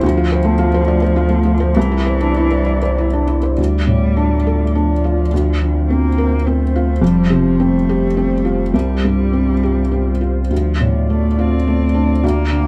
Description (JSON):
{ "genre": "neoclassical piano and strings", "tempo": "104 BPM", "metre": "3/4", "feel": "rubato", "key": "D minor", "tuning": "A4 = 441 Hz", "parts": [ { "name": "rich cello", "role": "second line", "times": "0.0-12.7 s", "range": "E3 to C4", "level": "-25 LUFS", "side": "equal", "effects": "none" }, { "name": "felt-muted upright piano", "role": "accompaniment", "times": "0.0-12.7 s", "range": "C2 to D5", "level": "-19 LUFS", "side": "equal", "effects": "none" }, { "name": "warbly tape-like pad", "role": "sustained chords", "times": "0.1-12.7 s", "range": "G3 to D5", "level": "-26 LUFS", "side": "equal", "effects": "chorus, built-in reverb" }, { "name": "warm sub bass", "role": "bass", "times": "0.0-12.7 s", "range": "F1 to D2", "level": "-20 LUFS", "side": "equal", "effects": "none" } ], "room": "light reverb", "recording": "none", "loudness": "-16 LUFS", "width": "mono", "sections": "0.0-3.6 A section; 3.6-12.7 B section", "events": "none", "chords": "0.0 F/D; 1.8 Cadd9; 3.6 Dm; 5.3 Bbadd9/D; 7.0 Fsus2; 8.7 Csus4; 10.5 Dm" }